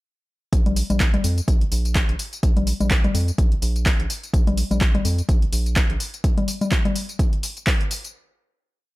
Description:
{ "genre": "acid house", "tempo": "126 BPM", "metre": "4/4", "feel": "swing 57% on 16ths", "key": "unclear", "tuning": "A4 = 441 Hz", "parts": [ { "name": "round analog bass", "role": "bass", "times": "0.5-6.0 s", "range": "Bb1 to F2", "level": "-22 LUFS", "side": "equal", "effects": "sidechain pumping" }, { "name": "electronic kick drum", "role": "drums", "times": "0.5-7.8 s", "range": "none", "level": "-20 LUFS", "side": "equal", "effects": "overdrive" }, { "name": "punchy analog drum machine", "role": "drums", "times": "0.5-8.1 s", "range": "congas, handclaps, hi-hat, tambourine", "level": "-24 LUFS", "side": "left 2 dB", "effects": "overdrive" } ], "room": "little or no reverb", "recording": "none", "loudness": "-18 LUFS", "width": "side -19 dB against mid", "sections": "0.5-8.1 groove", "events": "none", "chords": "none", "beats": "| 0.53 1.00 1.48 1.96 | 2.43 2.91 3.38 3.86 | 4.34 4.81 5.29 5.76 | 6.24 6.72 7.19 7.67" }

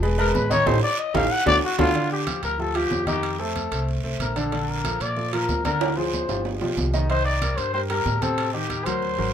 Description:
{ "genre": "Afro-Cuban jazz", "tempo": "187 BPM", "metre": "4/4", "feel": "straight", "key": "G minor", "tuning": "A4 = 440 Hz", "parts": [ { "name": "warm concert grand piano", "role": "accompaniment", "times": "0.0-9.3 s", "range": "C3 to Eb5", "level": "-26 LUFS", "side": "equal", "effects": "none" }, { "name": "upright bass", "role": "bass", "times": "0.0-9.3 s", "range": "E1 to Bb2", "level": "-27 LUFS", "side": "equal", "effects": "none" }, { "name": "agogo bells and timbales", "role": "percussion", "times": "0.0-9.0 s", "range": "none", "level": "-31 LUFS", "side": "right 6 dB", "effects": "none" }, { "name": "congas", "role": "percussion", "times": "0.0-9.3 s", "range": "none", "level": "-31 LUFS", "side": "equal", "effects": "none" }, { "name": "guiro", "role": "percussion", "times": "0.0-9.3 s", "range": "none", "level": "-35 LUFS", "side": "right 7 dB", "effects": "none" }, { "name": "growling trumpet", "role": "melody", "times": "0.2-9.3 s", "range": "F4 to F#5", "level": "-24 LUFS", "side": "left 3 dB", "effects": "none" } ], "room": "moderate club reverb, RT60 0.7 s", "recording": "minimal, uncompressed stereo recording", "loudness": "-21 LUFS", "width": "side -9 dB against mid", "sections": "0.0-2.0 A section; 2.0-9.3 B section", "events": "trumpet solo 0.0-2.0; band accent 0.7-2.0; drum fill 1.0-2.0, 5.8-7.1", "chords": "0.0 E; 0.7 Am7b5; 1.3 D; 2.0 G5; 3.2 F6; 4.5 Bbmaj7; 5.8 Dm7b5; 6.5 G7; 7.1 Cm9; 8.4 Am7b5", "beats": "0.03 0.35 | 0.67 0.99 1.31 1.63 | 1.95 2.27 2.59 2.92 | 3.24 3.56 3.88 4.20 | 4.53 4.85 5.17 5.49 | 5.81 6.13 6.45 6.78 | 7.10 7.42 7.74 8.06 | 8.38 8.70 9.03" }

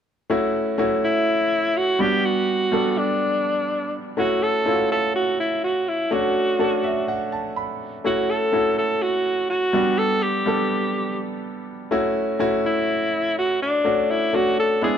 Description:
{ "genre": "pop", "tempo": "124 BPM", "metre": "4/4", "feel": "swing 55% on 16ths", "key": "A mixolydian", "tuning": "A4 = 441 Hz", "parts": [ { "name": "clear concert grand piano", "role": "accompaniment", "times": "0.3-15.0 s", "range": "G3 to B5", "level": "-23 LUFS", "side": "equal", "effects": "none" }, { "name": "bright alto saxophone", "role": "melody", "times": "1.0-15.0 s", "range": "D4 to A4", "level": "-21 LUFS", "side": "equal", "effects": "digital delay" } ], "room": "moderate studio reverb, RT60 0.8 s", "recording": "dark, warm production", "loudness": "-19 LUFS", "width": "side -8 dB against mid", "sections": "0.3-15.0 A section", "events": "grand piano fill 6.6-8.0", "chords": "0.3 A6; 2.0 Gmaj7; 4.2 A6; 6.1 Dmaj7; 8.0 A6; 9.7 Gmaj7; 11.9 A6; 13.9 Dmaj7", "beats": "| 0.30 0.79 1.27 1.75 | 2.24 2.72 3.21 3.69 | 4.17 4.66 5.14 5.62 | 6.11 6.59 7.08 7.56 | 8.04 8.53 9.01 9.50 | 9.98 10.46 10.95 11.43 | 11.91 12.40 12.88 13.37 | 13.85 14.34 14.82" }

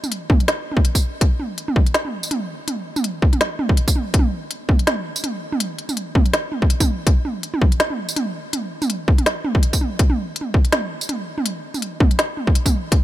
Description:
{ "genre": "drum and bass", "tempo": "164 BPM", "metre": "4/4", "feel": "swing 57% on 16ths, half-time", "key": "none", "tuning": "none", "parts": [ { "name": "organic electronic drum kit", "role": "drums", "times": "0.0-13.0 s", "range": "hi-hat, snare drum, tambourine, toms", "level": "-22 LUFS", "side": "right 1 dB", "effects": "overdrive" }, { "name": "electronic kick drum", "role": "drums", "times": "0.3-13.0 s", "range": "none", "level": "-16 LUFS", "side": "equal", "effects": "none" } ], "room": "little or no reverb", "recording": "none", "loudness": "-18 LUFS", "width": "side -14 dB against mid", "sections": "0.0-13.0 A section", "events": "none", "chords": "none", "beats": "0.12 0.48 0.85 | 1.21 1.58 1.94 2.31 | 2.68 3.04 3.41 3.77 | 4.14 4.50 4.87 5.24 | 5.60 5.97 6.33 6.70 | 7.07 7.43 7.80 8.16 | 8.53 8.89 9.26 9.63 | 9.99 10.36 10.72 11.09 | 11.46 11.82 12.19 12.55 | 12.92" }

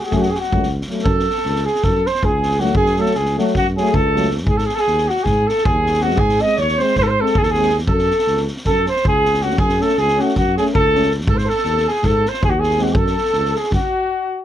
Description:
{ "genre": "balkan folk, Balkan brass band", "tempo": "318 BPM (eighths)", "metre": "9/8", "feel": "straight", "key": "F# dorian sharp4", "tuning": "A4 = 444 Hz", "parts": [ { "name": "dark cornet", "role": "melody", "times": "0.0-14.4 s", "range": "F#4 to D#5", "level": "-19 LUFS", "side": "equal", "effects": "none" }, { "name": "warm alto saxophone", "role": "second line", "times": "0.0-14.4 s", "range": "F#4 to D#5", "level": "-24 LUFS", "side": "right 4 dB", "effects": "none" }, { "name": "street-band drum kit", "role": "percussion", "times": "0.0-13.8 s", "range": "kick drum, snare drum", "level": "-22 LUFS", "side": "equal", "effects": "none" }, { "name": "mellow euphonium", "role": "accompaniment", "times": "0.1-12.9 s", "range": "F#3 to A3", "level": "-25 LUFS", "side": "right 5 dB", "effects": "none" }, { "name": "warm euphonium", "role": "accompaniment", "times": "0.1-12.9 s", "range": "A3 to C#4", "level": "-24 LUFS", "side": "left 7 dB", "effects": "none" }, { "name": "mellow tuba", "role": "bass", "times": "0.1-13.8 s", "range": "C#2 to G#2", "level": "-21 LUFS", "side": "equal", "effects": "none" } ], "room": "light reverb", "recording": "close, detailed microphones", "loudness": "-15 LUFS", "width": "side -11 dB against mid", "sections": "0.0-1.1 A section; 1.1-14.4 B section", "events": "break 13.8-14.4", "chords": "0.0 F#m; 4.5 G#; 7.9 F#m; 11.3 G#; 12.9 F#m", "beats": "0.10 0.29 0.48 0.67 0.86 | 1.05 1.24 1.43 1.62 1.81 2.00 2.19 2.38 2.57 | 2.76 2.95 3.14 3.33 3.52 3.71 3.90 4.09 4.29 | 4.47 4.67 4.86 5.04 5.24 5.42 5.61 5.80 5.99 | 6.18 6.37 6.56 6.75 6.94 7.13 7.32 7.51 7.70 | 7.88 8.07 8.26 8.45 8.64 8.83 9.02 9.20 9.39 | 9.58 9.77 9.96 10.14 10.33 10.52 10.71 10.89 11.08 | 11.27 11.46 11.64 11.83 12.02 12.20 12.39 12.57 12.76 | 12.95 13.13 13.32 13.51 13.69 13.88 14.06 14.25" }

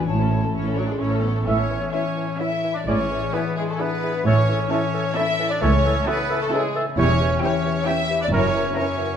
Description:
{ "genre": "classical", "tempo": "131 BPM", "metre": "3/4", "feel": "rubato", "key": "A major", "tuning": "A4 = 440 Hz", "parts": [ { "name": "warm symphonic violin section", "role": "melody", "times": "0.0-9.1 s", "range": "A4 to A#5", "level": "-34 LUFS", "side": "left 5 dB", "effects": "none" }, { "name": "hollow concert flute", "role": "second line", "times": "0.0-9.2 s", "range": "F#4 to A5", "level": "-29 LUFS", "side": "left 2 dB", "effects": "none" }, { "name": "rich symphonic violin section", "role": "second line", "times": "0.0-9.2 s", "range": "C#4 to E5", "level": "-28 LUFS", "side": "left 3 dB", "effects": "none" }, { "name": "warm symphonic viola section", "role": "accompaniment", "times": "0.0-9.1 s", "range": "A3 to E4", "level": "-31 LUFS", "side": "right 2 dB", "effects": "none" }, { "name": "warm French horn section", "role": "sustained chords", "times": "0.0-8.5 s", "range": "F#3 to E4", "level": "-32 LUFS", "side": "left 2 dB", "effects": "none" }, { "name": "concert harp", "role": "arpeggios", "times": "0.0-9.2 s", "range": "E2 to A5", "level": "-28 LUFS", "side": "left 8 dB", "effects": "none" }, { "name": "dark studio cello section", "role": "bass", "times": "0.0-8.7 s", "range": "C#2 to A2", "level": "-26 LUFS", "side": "right 3 dB", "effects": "none" }, { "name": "warm chamber double bass section", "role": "bass", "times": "0.0-8.7 s", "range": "E1 to C#2", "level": "-24 LUFS", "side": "right 2 dB", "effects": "none" }, { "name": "mellow cor anglais", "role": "second line", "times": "0.8-9.2 s", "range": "F#3 to E4", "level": "-29 LUFS", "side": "right 3 dB", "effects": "none" }, { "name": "mellow clarinet", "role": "second line", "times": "1.5-9.1 s", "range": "E4 to A#4", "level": "-31 LUFS", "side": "left 1 dB", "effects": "none" }, { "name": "mellow bassoon", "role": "accompaniment", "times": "1.5-9.1 s", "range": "E3", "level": "-30 LUFS", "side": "right 3 dB", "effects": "none" }, { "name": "dark trumpet section", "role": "stabs", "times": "1.5-8.5 s", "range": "A#4 to E5", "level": "-29 LUFS", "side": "right 3 dB", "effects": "none" } ], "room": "wet recital hall reverb, RT60 1.7 s", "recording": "dark, warm production", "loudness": "-19 LUFS", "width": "side -8 dB against mid", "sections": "0.0-1.5 A section; 1.5-9.2 B section", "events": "none", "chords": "0.1 A; 2.9 E7/A; 4.3 A; 5.6 A/C#; 7.0 C#dim/E; 8.3 F#7", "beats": "| 0.08 0.54 1.00 | 1.46 1.93 2.40 | 2.87 3.33 3.79 | 4.26 4.71 5.17 | 5.62 6.08 6.53 | 6.99 7.43 7.88 | 8.33 8.78" }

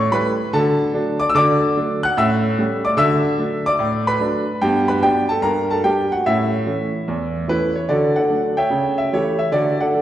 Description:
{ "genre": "jazz, stride piano", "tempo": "147 BPM", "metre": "4/4", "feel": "swing 66% on 8ths", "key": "D major", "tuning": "A4 = 441 Hz", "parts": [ { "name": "clear baby grand piano", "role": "solo", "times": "0.0-10.0 s", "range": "E2 to F#6", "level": "-16 LUFS", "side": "equal", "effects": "none" } ], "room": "wet recital hall reverb, RT60 1.8 s", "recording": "recorded in a church or concert hall, nothing above 10.4 kHz", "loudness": "-16 LUFS", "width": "side -12 dB against mid", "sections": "0.0-7.9 A section; 7.9-10.0 B section", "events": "none", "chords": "0.0 A7; 0.5 D; 2.2 A7; 3.0 D; 4.6 Gmaj7; 5.4 Gm; 6.3 A; 7.9 D; 8.7 A7/C#", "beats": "0.12 0.53 0.94 | 1.35 1.76 2.17 2.58 | 2.99 3.40 3.81 4.22 | 4.63 5.04 5.44 5.85 | 6.26 6.67 7.08 7.49 | 7.90 8.31 8.72 9.13 | 9.53 9.94" }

